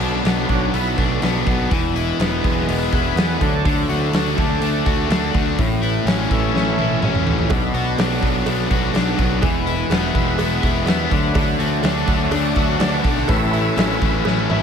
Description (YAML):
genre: classic rock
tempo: 124 BPM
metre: 4/4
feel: straight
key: unclear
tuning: A4 = 440 Hz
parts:
  - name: bright tonewheel organ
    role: sustained chords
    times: 0.0-14.6 s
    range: D3 to F#5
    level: -25 LUFS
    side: right 1 dB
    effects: slow rotary speaker, overdrive, plate reverb
  - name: cranked stack guitar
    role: riff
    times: 0.0-14.6 s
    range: A2 to F#4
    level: -22 LUFS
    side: left 12 dB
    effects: overdrive
  - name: distorted electric guitar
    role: riff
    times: 0.0-14.6 s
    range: E2 to G#4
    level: -25 LUFS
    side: right 14 dB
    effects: distortion
  - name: fuzz picked electric bass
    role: bass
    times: 0.0-14.6 s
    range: E1 to E2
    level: -23 LUFS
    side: right 1 dB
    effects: overdrive
  - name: big rock drum kit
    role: drums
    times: 0.0-14.6 s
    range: hi-hat, kick drum, snare drum, toms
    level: -21 LUFS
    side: equal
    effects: none
  - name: cowbell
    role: percussion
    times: 7.5-14.4 s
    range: none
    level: -30 LUFS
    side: right 11 dB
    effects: none
room: light reverb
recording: none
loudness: -16 LUFS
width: side -7 dB against mid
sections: 0.0-14.6 A section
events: tonewheel organ solo 0.0-14.6; drum fill 6.5-7.5, 14.3-14.6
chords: 0.0 Bm; 1.7 E; 3.4 D; 5.6 A; 7.5 Bm; 9.4 E; 11.1 D; 13.3 A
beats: 0.24 0.73 1.22 | 1.71 2.19 2.68 3.17 | 3.65 4.14 4.62 5.10 | 5.58 6.07 6.55 7.03 | 7.51 7.99 8.47 8.95 | 9.43 9.91 10.39 10.88 | 11.36 11.84 12.32 12.81 | 13.29 13.77 14.26